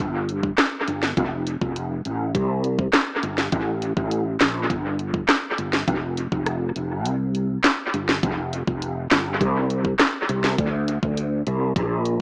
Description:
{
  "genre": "dancehall",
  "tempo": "102 BPM",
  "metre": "4/4",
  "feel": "straight",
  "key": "unclear",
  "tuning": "A4 = 440 Hz",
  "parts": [
    { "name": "fretless electric bass", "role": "bass", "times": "0.0-12.2 s", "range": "F1 to D2", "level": "-26 LUFS", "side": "equal", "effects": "ensemble chorus" },
    { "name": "afro-pop drum kit", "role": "drums", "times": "0.0-12.2 s", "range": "handclaps, hi-hat, kick drum, rim click, snare drum", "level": "-24 LUFS", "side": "equal", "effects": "dub echo" }
  ],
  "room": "light reverb",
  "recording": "echo-heavy mix, small speaker sound",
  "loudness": "-23 LUFS",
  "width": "mono",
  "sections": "0.0-8.2 A section; 8.2-12.2 B section",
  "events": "kick muted 7.1-8.2",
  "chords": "none"
}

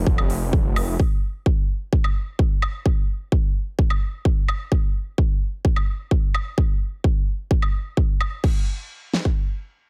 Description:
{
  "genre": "EDM, festival progressive house",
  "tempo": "129 BPM",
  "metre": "4/4",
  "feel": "straight",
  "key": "unclear",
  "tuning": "A4 = 440 Hz",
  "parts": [
    { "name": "detuned saw bass", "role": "bass", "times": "0.0-1.0 s", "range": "F1", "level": "-26 LUFS", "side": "equal", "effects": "chorus, sidechain pumping" },
    { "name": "big-room dance drum kit", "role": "drums", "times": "0.1-9.4 s", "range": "kick drum, snare drum", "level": "-22 LUFS", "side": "equal", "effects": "none" },
    { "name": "big-room dance drum kit", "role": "drums", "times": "0.2-8.5 s", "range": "crash cymbal, hi-hat, woodblock", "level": "-32 LUFS", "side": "equal", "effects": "none" }
  ],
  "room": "little or no reverb",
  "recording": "none",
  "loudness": "-22 LUFS",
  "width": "mono",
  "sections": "0.0-8.4 A section; 8.4-9.9 B section",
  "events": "none",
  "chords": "none"
}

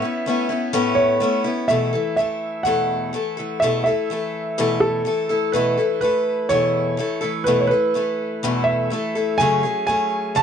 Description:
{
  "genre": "rock",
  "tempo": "125 BPM",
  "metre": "4/4",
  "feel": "straight",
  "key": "unclear",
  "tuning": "A4 = 439 Hz",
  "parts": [
    { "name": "dark concert grand piano", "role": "melody", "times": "0.0-10.4 s", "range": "A4 to A5", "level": "-21 LUFS", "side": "right 2 dB", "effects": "none" },
    { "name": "picked acoustic archtop guitar", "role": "accompaniment", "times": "0.0-10.4 s", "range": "E2 to A4", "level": "-21 LUFS", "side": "left 3 dB", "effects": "none" }
  ],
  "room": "light reverb",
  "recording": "nothing above 10.6 kHz",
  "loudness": "-18 LUFS",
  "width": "side -8 dB against mid",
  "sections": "0.0-1.7 A section; 1.7-10.4 B section",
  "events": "none",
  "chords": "0.0 Aadd9; 1.7 Esus4; 9.4 F#madd9"
}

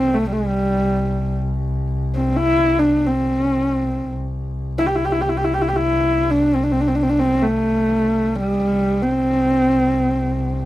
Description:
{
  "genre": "mongolian traditional, Mongolian folk",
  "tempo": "free time",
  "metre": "none",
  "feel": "none",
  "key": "C gong mode",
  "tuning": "A4 = 440 Hz",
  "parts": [
    { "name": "dark horsehead fiddle", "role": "melody", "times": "0.0-10.7 s", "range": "G3 to G4", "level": "-17 LUFS", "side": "equal", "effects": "none" },
    { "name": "rich double bass", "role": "drone", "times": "0.0-10.7 s", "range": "C2", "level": "-23 LUFS", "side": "equal", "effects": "none" }
  ],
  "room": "light reverb",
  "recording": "dry, close 1970s-style studio recording",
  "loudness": "-17 LUFS",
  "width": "side -15 dB against mid",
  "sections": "0.0-10.7 A section",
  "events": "none",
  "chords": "none"
}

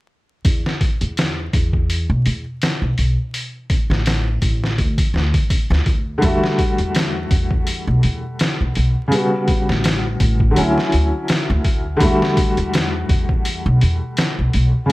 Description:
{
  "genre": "trip hop",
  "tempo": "83 BPM",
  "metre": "4/4",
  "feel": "swing 55% on 16ths",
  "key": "E dorian",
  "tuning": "A4 = 444 Hz",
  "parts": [
    { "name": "trip hop sampler-style drum kit", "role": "drums", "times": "0.4-14.9 s", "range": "hi-hat, kick drum, snare drum", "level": "-19 LUFS", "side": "equal", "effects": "none" },
    { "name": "upright bass", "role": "bass", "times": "0.5-14.7 s", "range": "A1 to E2", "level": "-19 LUFS", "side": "equal", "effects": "none" },
    { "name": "felt-muted upright piano", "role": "accompaniment", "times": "6.2-14.9 s", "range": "C#3 to F#4", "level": "-20 LUFS", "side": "left 1 dB", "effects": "tremolo, vintage 12-bit sampler grit, tape echo" }
  ],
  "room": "small room ambience",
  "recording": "vinyl crackle",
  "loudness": "-16 LUFS",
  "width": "side -19 dB against mid",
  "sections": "0.4-12.0 A section; 12.0-14.9 B section",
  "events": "none",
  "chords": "0.4 E5; 3.3 N.C.; 6.2 Em11; 9.1 A13; 10.6 Dmaj9; 12.0 Em11"
}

